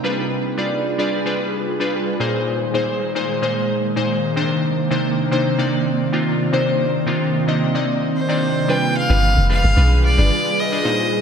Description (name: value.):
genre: amapiano.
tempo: 111 BPM.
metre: 4/4.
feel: straight.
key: unclear.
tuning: A4 = 442 Hz.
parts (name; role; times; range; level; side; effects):
glassy digital keys; accompaniment; 0.0-11.2 s; Bb2 to Bb5; -21 LUFS; left 1 dB; chorus.
ethereal airy pad; sustained chords; 0.0-11.2 s; C3 to B4; -22 LUFS; right 1 dB; ensemble chorus, built-in reverb.
rich fiddle; melody; 8.2-11.2 s; C5 to G5; -20 LUFS; equal; analog delay.
deep log drum bass; bass; 9.1-10.3 s; F1 to B1; -14 LUFS; equal; none.
room: wet lush hall reverb, RT60 1.9 s, digital ambience.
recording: dreamy mix soaked in reverb.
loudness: -16 LUFS.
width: side -7 dB against mid.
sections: 0.0-8.7 A section; 8.7-11.2 B section.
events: drop 8.7-11.2.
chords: 0.0 G7b9; 2.2 Bb7sus4; 4.4 Cm9; 8.7 G7b9.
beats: | 0.04 0.58 1.12 1.66 | 2.20 2.74 3.29 3.83 | 4.37 4.91 5.45 5.99 | 6.53 7.07 7.61 8.15 | 8.69 9.23 9.77 10.31 | 10.85.